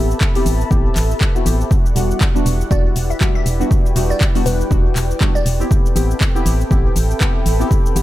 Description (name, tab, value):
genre	deep house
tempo	120 BPM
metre	4/4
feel	swing 58% on 16ths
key	E minor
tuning	A4 = 439 Hz
part	warm analog pad	sustained chords	0.0-8.0 s	C4 to A5	-30 LUFS	left 1 dB	chorus, sidechain pumping
part	deep mellow chord stab	stabs	0.0-8.0 s	G3 to G4	-23 LUFS	left 2 dB	chorus, sidechain pumping, dub echo
part	organ-like FM bass	bass	0.0-8.0 s	E1 to A1	-17 LUFS	equal	sidechain pumping
part	warbly tape-like pad	texture	0.0-8.0 s	E4 to B5	-28 LUFS	equal	chorus, built-in reverb, sidechain pumping
part	house drum kit	drums	0.1-8.0 s	cabasa, handclaps, hi-hat	-25 LUFS	left 1 dB	overdrive
part	electronic kick drum	drums	0.2-7.8 s	none	-16 LUFS	equal	none
part	glassy wavetable pluck	melody	2.7-5.7 s	B4 to E5	-27 LUFS	right 1 dB	chorus, tape echo
room	little or no reverb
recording	echo-heavy mix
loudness	-14 LUFS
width	side -15 dB against mid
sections	0.0-8.0 A section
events	none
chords	0.0 Am9; 1.7 Em9; 5.7 Am9